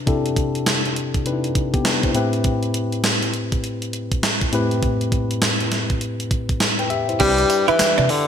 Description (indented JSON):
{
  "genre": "R&B, new jack swing",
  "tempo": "101 BPM",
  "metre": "4/4",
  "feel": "swing 62% on 16ths",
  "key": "C major",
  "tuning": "A4 = 440 Hz",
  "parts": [
    { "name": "tine electric piano", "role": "accompaniment", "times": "0.0-8.3 s", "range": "A2 to G5", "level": "-22 LUFS", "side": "left 2 dB", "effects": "low-pass filter" },
    { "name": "gated 80s digital drum machine", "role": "drums", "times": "0.1-8.3 s", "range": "crash cymbal, handclaps, hi-hat, kick drum, snare drum, tambourine", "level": "-21 LUFS", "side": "right 1 dB", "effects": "gated reverb, gated reverb snare" },
    { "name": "breathy tenor saxophone", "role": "melody", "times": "7.2-8.3 s", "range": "D3 to G3", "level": "-16 LUFS", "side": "left 1 dB", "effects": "none" },
    { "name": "direct-recorded clean electric guitar", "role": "riff", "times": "7.2-8.1 s", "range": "C4 to E4", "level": "-24 LUFS", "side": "right 7 dB", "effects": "ensemble chorus" },
    { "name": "deep dub fingered electric bass", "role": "bass", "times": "7.2-8.1 s", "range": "C2 to C3", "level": "-23 LUFS", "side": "right 1 dB", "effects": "none" }
  ],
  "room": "moderate plate reverb, RT60 2.2 s",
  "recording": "bright 1980s-style digital production",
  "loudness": "-18 LUFS",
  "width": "side -8 dB against mid",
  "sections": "0.0-7.2 A section; 7.2-8.3 B section",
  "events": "filter sweep on tine electric piano 0.0-7.2",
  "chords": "0.0 Cmaj9; 2.2 Am9; 7.2 Cmaj9"
}